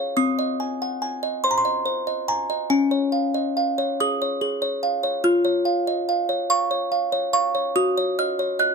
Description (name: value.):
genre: classical, lullaby for music box.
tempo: 48 BPM (dotted quarters).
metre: 6/8.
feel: rubato.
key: Db major.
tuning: A4 = 440 Hz.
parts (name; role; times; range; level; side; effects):
music box; solo; 0.0-8.7 s; C4 to Gb6; -20 LUFS; equal; none.
room: light reverb.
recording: close, detailed microphones.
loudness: -20 LUFS.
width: side -5 dB against mid.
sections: 0.0-8.7 A section.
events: none.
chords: 0.2 Ab/C; 2.7 Db; 5.2 Db/F; 7.8 Ebm7/Gb.